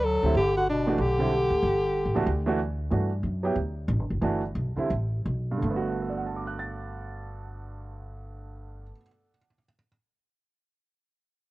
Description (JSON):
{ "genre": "modal jazz", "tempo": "160-188 BPM", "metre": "4/4", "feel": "swing 61% on 8ths", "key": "G major", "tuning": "A4 = 442 Hz", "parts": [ { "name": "breathy alto saxophone", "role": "melody", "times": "0.0-2.6 s", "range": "D4 to A4", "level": "-26 LUFS", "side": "equal", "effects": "cassette tape, plate reverb" }, { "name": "clear bass clarinet", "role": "second line", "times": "0.0-2.6 s", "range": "B2 to F#3", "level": "-30 LUFS", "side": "left 2 dB", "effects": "plate reverb" }, { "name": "upright bass", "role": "bass", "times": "0.0-8.9 s", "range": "F#1 to G2", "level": "-30 LUFS", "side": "equal", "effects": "none" }, { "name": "warm upright piano", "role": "accompaniment", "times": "0.2-9.9 s", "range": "G2 to A6", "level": "-30 LUFS", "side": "right 3 dB", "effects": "none" } ], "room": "moderate booth ambience, RT60 0.2 s", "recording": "home recording on cassette", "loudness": "-24 LUFS", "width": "side -18 dB against mid", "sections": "0.0-2.9 A section; 2.9-5.6 B section; 5.6-8.6 C section", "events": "slowing down 2.9-5.6", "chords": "0.0 Gmaj9" }